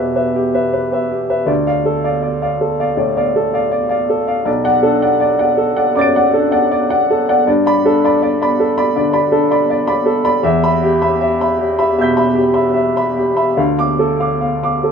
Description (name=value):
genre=neoclassical minimalist piano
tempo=79 BPM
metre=4/4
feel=uneven beats, rubato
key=unclear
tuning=A4 = 441 Hz
part: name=clear baby grand piano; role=solo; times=0.0-14.9 s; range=B1 to D7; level=-13 LUFS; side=equal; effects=none
room=light reverb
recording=minimal, uncompressed stereo recording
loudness=-13 LUFS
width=side -6 dB against mid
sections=0.0-14.9 A section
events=none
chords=0.0 Em; 1.5 Dm; 4.5 Bm7; 7.5 Gadd9; 10.4 Em; 13.6 Dm